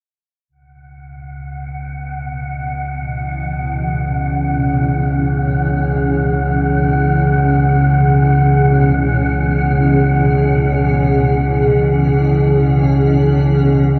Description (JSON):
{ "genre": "dark ambient drone", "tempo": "free time", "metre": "none", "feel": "none", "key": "unclear", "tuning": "A4 = 440 Hz", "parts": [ { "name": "granular cloud pad", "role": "sustained chords", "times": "2.3-14.0 s", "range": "B2 to G#4", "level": "-20 LUFS", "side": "equal", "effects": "built-in reverb" }, { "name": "deep rumbling drone", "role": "drone", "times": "1.1-14.0 s", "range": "C#2 to C#3", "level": "-18 LUFS", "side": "equal", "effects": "built-in reverb" }, { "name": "wind-like tuned noise texture", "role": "texture", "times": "1.3-14.0 s", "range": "F#5", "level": "-25 LUFS", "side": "equal", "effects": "built-in reverb" }, { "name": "gamelan-type bossed gongs", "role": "arpeggios", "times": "8.9-14.0 s", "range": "none", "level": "barely audible", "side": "none", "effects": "none" } ], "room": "wet cathedral reverb, RT60 7.0 s", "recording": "worn, warbling old tape, cassette tape, warbly pitch drift", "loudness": "-15 LUFS", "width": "mono", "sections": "0.5-14.0 A section", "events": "none", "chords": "0.5 C#m7" }